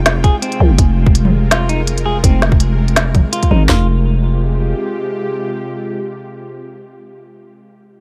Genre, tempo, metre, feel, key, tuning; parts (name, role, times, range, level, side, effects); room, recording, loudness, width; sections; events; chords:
half-time drum and bass; 165 BPM; 4/4; swing 55% on 16ths, half-time; F minor; A4 = 439 Hz
bowed-like drone; sustained chords; 0.0-7.4 s; C3 to G5; -26 LUFS; equal; built-in reverb, sidechain pumping
growling 808-style bass; bass; 0.0-4.7 s; F1 to C2; -16 LUFS; equal
organic electronic drum kit; drums; 0.1-3.6 s; hi-hat, snare drum, toms; -19 LUFS; equal
clean electric guitar; arpeggios; 0.2-3.9 s; C4 to Ab4; -26 LUFS; equal; vintage 12-bit sampler grit, tape echo
trap drum kit; drums; 0.2-3.8 s; kick drum, snare drum, toms; -14 LUFS; equal
light reverb; -15 LUFS; mono
0.0-3.7 A section; 3.7-6.6 B section
drop 0.0-3.7
0.0 Fmadd9